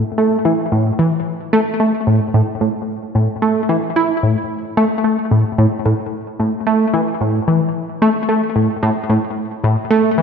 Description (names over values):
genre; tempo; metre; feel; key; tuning
ambient; 111 BPM; 4/4; straight; unclear; A4 = 440 Hz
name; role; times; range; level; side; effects
tight sequenced synth; solo; 0.0-10.2 s; A2 to E4; -14 LUFS; equal; chorus, ping-pong delay
room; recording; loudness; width
wet echo chamber reverb, RT60 2.5 s; echo-heavy mix; -14 LUFS; side -6 dB against mid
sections
0.0-10.2 A section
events
none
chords
none